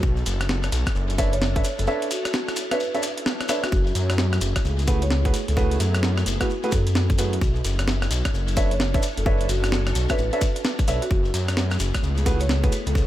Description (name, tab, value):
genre	UK garage, two-step garage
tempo	130 BPM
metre	4/4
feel	swing 63% on 16ths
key	unclear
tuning	A4 = 439 Hz
part	marimba with soft mallets	melody	0.0-13.0 s	F#4 to C#5	-32 LUFS	right 1 dB	dub echo
part	soft string machine	sustained chords	0.0-13.1 s	A3 to A4	-35 LUFS	equal	phaser, ensemble chorus, sidechain pumping
part	dark detuned saw bass	bass	0.0-13.1 s	F#1 to F#2	-23 LUFS	equal	tube saturation, sidechain pumping
part	electronic kick drum	drums	0.0-13.1 s	none	-23 LUFS	equal	small room ambience
part	shekere	percussion	0.0-13.1 s	none	-34 LUFS	left 5 dB	dub echo
part	breakbeat sampler-style drum kit	drums	0.3-12.9 s	hi-hat, rim click, snare drum	-28 LUFS	equal	small room ambience
part	dark baby grand piano	stabs	1.2-12.7 s	A3 to E5	-29 LUFS	right 2 dB	dub echo
room	small room ambience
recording	echo-heavy mix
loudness	-20 LUFS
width	side -13 dB against mid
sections	0.0-13.1 A section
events	drum fill 3.3-3.7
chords	0.0 Bm11; 3.7 F#m11; 7.4 Bm11; 11.1 F#m11